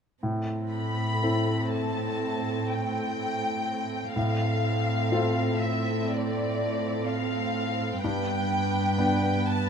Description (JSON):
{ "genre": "cinematic, emotional film score for orchestra", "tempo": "62 BPM", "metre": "4/4", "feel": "rubato", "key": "A minor", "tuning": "A4 = 439 Hz", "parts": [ { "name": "clear baby grand piano", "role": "accompaniment", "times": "0.2-9.7 s", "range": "G2 to B4", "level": "-30 LUFS", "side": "left 1 dB", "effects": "none" }, { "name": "dark studio viola section", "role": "accompaniment", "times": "0.2-9.7 s", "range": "B3 to B4", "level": "-32 LUFS", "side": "right 4 dB", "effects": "none" }, { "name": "warm studio cello section", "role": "bass", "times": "0.2-9.7 s", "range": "G2 to A2", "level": "-31 LUFS", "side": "equal", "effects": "none" }, { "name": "dark studio violin section", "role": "melody", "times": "0.7-9.7 s", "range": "D5 to B5", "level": "-30 LUFS", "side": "left 2 dB", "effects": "none" } ], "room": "light reverb", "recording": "close, detailed microphones", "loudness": "-25 LUFS", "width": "side -7 dB against mid", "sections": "0.2-9.7 A section", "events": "none", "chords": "0.2 Am; 4.2 F/A; 8.0 G" }